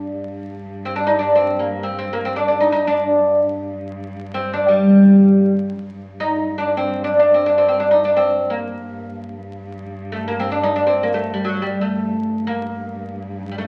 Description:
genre	Arabic maqam ensemble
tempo	free time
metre	none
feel	none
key	G minor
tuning	A4 = 441 Hz
part	oud	melody	0.0-13.7 s	F#3 to Eb4	-18 LUFS	equal	none
part	dark cello	drone	0.0-13.7 s	G2	-34 LUFS	equal	none
room	wet large studio reverb, RT60 1.1 s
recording	very old 78 rpm record, vinyl crackle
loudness	-18 LUFS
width	mono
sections	0.0-5.8 A section; 5.8-13.7 A section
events	none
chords	none

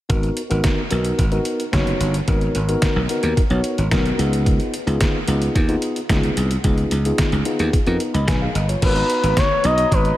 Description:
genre	early-eighties boogie funk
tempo	110 BPM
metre	4/4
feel	straight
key	G# dorian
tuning	A4 = 442 Hz
part	mellow tine electric piano	accompaniment	0.1-10.2 s	B3 to B5	-23 LUFS	left 1 dB	none
part	slap bass	bass	0.1-10.1 s	F#1 to E#2	-20 LUFS	equal	none
part	detuned 8-bit digital drum machine	drums	0.1-10.2 s	crash cymbal, hi-hat, kick drum, snare drum	-21 LUFS	equal	overdrive
part	expressive portamento lead	melody	8.8-10.2 s	B4 to D#5	-18 LUFS	left 1 dB	chorus
room	light reverb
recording	none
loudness	-17 LUFS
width	side -14 dB against mid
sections	0.1-8.8 A section; 8.8-10.2 B section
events	none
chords	0.1 G#m9; 4.2 C#7; 8.8 G#m9

